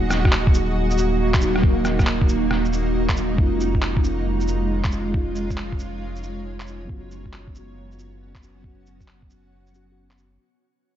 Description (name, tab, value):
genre	future garage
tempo	137 BPM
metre	4/4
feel	swing 66% on 16ths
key	unclear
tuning	A4 = 439 Hz
part	muted felt-like synth keys	accompaniment	0.0-10.4 s	F#3 to F#4	-28 LUFS	left 1 dB	chorus, sidechain pumping, low-pass filter, tape echo
part	granular cloud pad	sustained chords	0.0-10.4 s	G#3 to F#5	-26 LUFS	right 3 dB	built-in reverb, vintage 12-bit sampler grit, sidechain pumping
part	warm sub bass	bass	0.0-10.4 s	D#1 to F#1	-26 LUFS	equal	sidechain pumping
part	electronic rim click, shaker and handclaps	drums	0.1-10.3 s	none	-27 LUFS	equal	none
part	electronic kick drum	drums	0.3-9.3 s	none	-20 LUFS	equal	none
room	light reverb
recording	cassette tape, nothing above 7.7 kHz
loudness	-18 LUFS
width	side -10 dB against mid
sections	0.0-10.4 A section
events	fade-out 0.0-10.4; filter sweep on synth keys 0.0-10.4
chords	0.0 D#m; 3.4 C#add9/E#; 6.9 F#sus4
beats	0.32 0.76 1.20 | 1.63 2.07 2.51 2.95 | 3.38 3.82 4.26 4.70 | 5.14 5.58 6.01 6.45 | 6.89 7.33 7.76 8.20 | 8.64 9.08 9.52 9.96